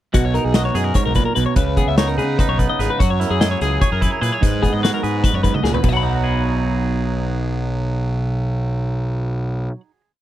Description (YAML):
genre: math rock and midwest emo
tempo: 295 BPM (eighths)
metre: 7/8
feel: straight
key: B major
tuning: A4 = 440 Hz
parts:
  - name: twangy electric guitar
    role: accompaniment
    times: 0.1-10.1 s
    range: G#2 to B4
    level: -23 LUFS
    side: right 7 dB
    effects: none
  - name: twelve-string electric guitar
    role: arpeggios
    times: 0.1-9.8 s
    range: F#4 to B5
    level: -23 LUFS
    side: left 8 dB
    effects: none
  - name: fuzz fingered electric bass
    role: bass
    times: 0.1-9.7 s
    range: G#1 to C#3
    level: -21 LUFS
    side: equal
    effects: overdrive
  - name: loose indie drum kit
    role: drums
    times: 0.1-5.9 s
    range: crash cymbal, hi-hat, kick drum, snare drum, toms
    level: -20 LUFS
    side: equal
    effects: none
room: little or no reverb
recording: none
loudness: -16 LUFS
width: side -13 dB against mid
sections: 0.1-5.8 A section; 5.8-8.7 final chord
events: drum fill 5.5-5.8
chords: 0.1 B69; 1.6 C#7sus2; 3.0 F#9; 4.4 G#m7; 5.8 B6